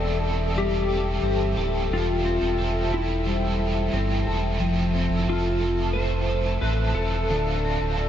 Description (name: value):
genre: dream pop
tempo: 89 BPM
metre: 4/4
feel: straight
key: unclear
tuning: A4 = 440 Hz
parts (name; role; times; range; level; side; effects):
- clean lap steel guitar; melody; 0.0-7.6 s; E4 to C5; -28 LUFS; left 3 dB; analog chorus, ping-pong delay
- biting overdriven guitar; accompaniment; 0.0-8.1 s; D3 to A4; -32 LUFS; right 3 dB; tremolo, ensemble chorus
- warbly tape-like pad; sustained chords; 0.0-8.1 s; A4 to A5; -31 LUFS; left 1 dB; chorus, built-in reverb
- twelve-string electric guitar; arpeggios; 0.0-8.1 s; D3 to A4; -29 LUFS; equal; wide subtle chorus, ping-pong delay
- sub bass with octave; bass; 0.0-8.1 s; D1 to A1; -26 LUFS; equal; none
- vibraphone with medium hard mallets; texture; 0.0-8.1 s; F4 to D5; -43 LUFS; left 2 dB; none
room: moderate huge ambient reverb, RT60 8.7 s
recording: dreamy mix soaked in reverb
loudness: -22 LUFS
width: side -10 dB against mid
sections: 0.0-8.1 A section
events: none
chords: 0.0 Am7; 4.6 Fmaj7; 7.3 Dm7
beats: 0.56 1.23 | 1.91 2.58 3.25 3.93 | 4.60 5.28 5.95 6.63 | 7.30 7.97